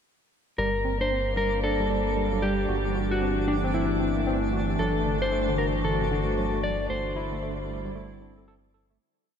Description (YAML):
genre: IDM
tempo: 114 BPM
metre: 4/4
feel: swing 62% on 16ths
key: unclear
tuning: A4 = 440 Hz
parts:
  - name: mellow electric guitar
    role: melody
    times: 0.6-8.4 s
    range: D4 to D5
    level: -28 LUFS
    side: left 1 dB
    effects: tape echo
  - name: hollow soft pad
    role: sustained chords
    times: 0.9-9.0 s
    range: D3 to F#4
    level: -30 LUFS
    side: left 2 dB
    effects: chorus
  - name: tine electric piano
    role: arpeggios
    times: 0.6-9.0 s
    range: C3 to A4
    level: -32 LUFS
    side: right 2 dB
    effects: medium stereo tremolo, low-pass filter, tape echo
  - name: round analog bass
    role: bass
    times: 0.6-9.0 s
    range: G1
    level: -31 LUFS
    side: equal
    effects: tube saturation
  - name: twinkling granular texture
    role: texture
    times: 1.1-9.0 s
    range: D4 to D5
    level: -38 LUFS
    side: right 1 dB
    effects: built-in reverb
room: wet huge ambient reverb, RT60 7.5 s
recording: dreamy mix soaked in reverb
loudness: -24 LUFS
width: side -7 dB against mid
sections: 0.6-9.0 groove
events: filter sweep on tine electric piano 0.6-9.0; fade-out 6.2-9.0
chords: 0.6 Gmadd9; 2.7 C/G; 4.8 Dadd9/G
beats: | 0.58 1.11 1.64 2.16 | 2.69 3.21 3.74 4.27 | 4.79 5.32 5.85 6.37 | 6.90 7.42 7.95 8.48